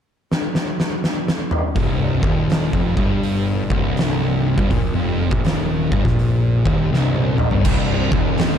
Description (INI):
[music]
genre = stoner and doom metal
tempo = 81 BPM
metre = 4/4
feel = swing 64% on 8ths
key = C minor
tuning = A4 = 440 Hz
[part]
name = oversized low-tuned drum kit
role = drums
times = 0.3-8.6 s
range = crash cymbal, hi-hat, kick drum, snare drum, toms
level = -20 LUFS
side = equal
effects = none
[part]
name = thick fuzz guitar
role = riff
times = 1.8-8.6 s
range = C2 to Bb2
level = -21 LUFS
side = left 7 dB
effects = distortion
[part]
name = thick fuzz guitar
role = riff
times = 1.8-8.6 s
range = C2 to Bb2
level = -23 LUFS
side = right 8 dB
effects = distortion
[part]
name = fuzz picked electric bass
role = bass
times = 1.8-8.6 s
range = C1 to Bb1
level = -25 LUFS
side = equal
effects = overdrive
[part]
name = thick fuzz guitar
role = riff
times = 7.6-8.6 s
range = C2 to Eb2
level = -25 LUFS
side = right 1 dB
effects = distortion
[sound]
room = light reverb, small room ambience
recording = dark, warm production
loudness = -16 LUFS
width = side -8 dB against mid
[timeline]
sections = 0.0-1.8 A section; 1.8-7.7 B section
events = drum fill 0.3-1.8, 6.9-7.7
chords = 0.0 N.C.; 1.8 Cm